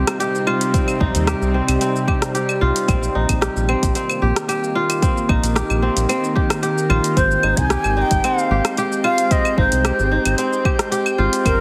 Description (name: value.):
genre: organic downtempo.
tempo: 112 BPM.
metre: 4/4.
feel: straight.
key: unclear.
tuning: A4 = 438 Hz.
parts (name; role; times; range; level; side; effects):
bowed-like drone; sustained chords; 0.0-11.6 s; C3 to F4; -27 LUFS; equal; built-in reverb, sidechain pumping.
kora; arpeggios; 0.0-11.6 s; C4 to G4; -24 LUFS; equal; digital delay.
round analog bass; bass; 0.0-11.6 s; G1 to Eb2; -22 LUFS; equal; sidechain pumping.
deep house drum kit; drums; 0.1-11.6 s; claves, hi-hat, rim click, shaker; -26 LUFS; equal; studio reverb.
electronic kick drum; drums; 0.7-11.6 s; none; -22 LUFS; equal; studio reverb.
breathy bright ney; melody; 7.2-11.6 s; Bb4 to Ab5; -22 LUFS; equal; digital delay.
drifting glass-harmonics texture; texture; 7.7-11.6 s; C4 to C5; -32 LUFS; equal; chorus, built-in reverb.
room: moderate echo chamber reverb, RT60 1.8 s.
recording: heavily compressed radio sound, multiband compression.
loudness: -18 LUFS.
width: mono.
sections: 0.0-11.6 A section.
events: none.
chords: 0.0 Cm; 2.9 Eb/Bb; 7.2 Abmaj7.